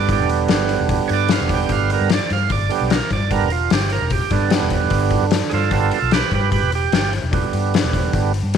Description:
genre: blues rock power trio and southern rock.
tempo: 149 BPM.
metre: 4/4.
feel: straight.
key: G mixolydian.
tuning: A4 = 443 Hz.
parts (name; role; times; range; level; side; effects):
overdriven tonewheel organ; sustained chords; 0.0-8.3 s; D3 to G5; -20 LUFS; right 11 dB; slow rotary speaker.
vintage muted fingered electric bass; bass; 0.0-8.6 s; E1 to G2; -21 LUFS; left 1 dB; none.
oversized low-tuned drum kit; drums; 0.1-8.6 s; hi-hat, kick drum, snare drum; -21 LUFS; left 5 dB; none.
room: light reverb.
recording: 1960s-style stereo.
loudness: -16 LUFS.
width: side -8 dB against mid.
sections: 0.0-8.6 A section.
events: tonewheel organ solo 0.0-8.6.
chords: 0.0 G.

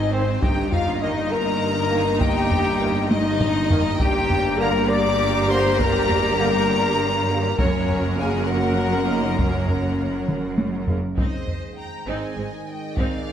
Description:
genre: cinematic, epic orchestral film score.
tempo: 67 BPM (dotted quarters).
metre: 6/8.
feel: straight.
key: unclear.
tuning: A4 = 440 Hz.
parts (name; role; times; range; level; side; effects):
rich studio violin section; melody; 0.0-13.3 s; C5 to D6; -32 LUFS; left 2 dB; none.
bright silver concert flute; second line; 0.0-10.3 s; C5 to D6; -29 LUFS; left 2 dB; none.
warm symphonic violin section; second line; 0.0-13.3 s; C5 to Bb5; -31 LUFS; left 3 dB; none.
rich symphonic viola section; accompaniment; 0.0-13.2 s; Ab3 to Bb4; -27 LUFS; right 2 dB; none.
warm French horn section; sustained chords; 0.0-13.3 s; C4 to D5; -25 LUFS; left 4 dB; none.
rich symphonic cello section; bass; 0.0-13.1 s; Gb2 to Ab2; -26 LUFS; right 2 dB; none.
rich symphonic double bass section; bass; 0.0-13.0 s; Gb1 to Ab1; -29 LUFS; right 3 dB; none.
dark trombone section; sustained chords; 0.1-13.3 s; Db3 to C4; -33 LUFS; right 2 dB; none.
solo taiko drums; drums; 0.4-13.3 s; none; -24 LUFS; equal; none.
room: moderate concert hall reverb, RT60 2.0 s.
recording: none.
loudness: -19 LUFS.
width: side -9 dB against mid.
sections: 0.0-11.2 A section; 11.2-13.3 B section.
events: drum fill 3.1-4.0, 10.3-11.2.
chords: 0.4 Eb/G; 4.0 Gm; 7.6 Gb; 11.2 Ab.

